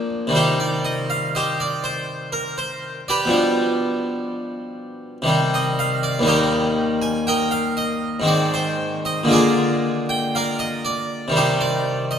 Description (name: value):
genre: classical, baroque-style suite movement for harpsichord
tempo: 60 BPM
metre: 3/4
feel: rubato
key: Eb major from 6.3 s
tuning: A4 = 439 Hz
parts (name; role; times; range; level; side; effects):
- harpsichord; solo; 0.0-12.2 s; Eb2 to Ab5; -18 LUFS; equal; none
room: wet church reverb, RT60 2.8 s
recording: none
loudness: -18 LUFS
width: side -8 dB against mid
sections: 0.0-12.2 A section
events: none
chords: 0.3 Cm; 3.3 G7/B; 5.3 Cm; 6.3 Eb; 8.3 Ab; 9.3 Bb7; 11.4 Cm